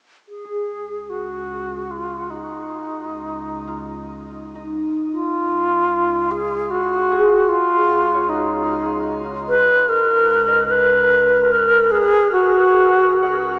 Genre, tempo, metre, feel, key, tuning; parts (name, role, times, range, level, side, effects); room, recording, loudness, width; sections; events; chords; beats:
ambient; 75 BPM; 3/4; straight; Db mixolydian; A4 = 439 Hz
bright alto flute; melody; 0.3-13.6 s; Eb4 to Cb5; -19 LUFS; equal; shimmer reverb, diffuse ambient delay
deep rumbling drone; bass; 1.0-13.6 s; Db2; -40 LUFS; equal; built-in reverb, phaser
concert harp; arpeggios; 0.5-13.6 s; Eb4 to Gb5; -27 LUFS; equal; shimmer reverb, diffuse ambient delay
wet huge ambient reverb, RT60 9.3 s; worn, warbling old tape, cassette tape, warbly pitch drift, small speaker sound; -17 LUFS; mono
0.3-13.6 A section
fade-in on harp 0.3-13.6; fade-in on alto flute 0.3-13.6
0.3 Dbsus4; 2.7 Dbadd9; 7.5 Db; 9.9 Cbmaj9/Db; 12.3 Dbsus4
| 0.31 1.11 1.91 | 2.71 3.51 4.31 | 5.11 5.91 6.71 | 7.51 8.31 9.11 | 9.91 10.71 11.51 | 12.31 13.11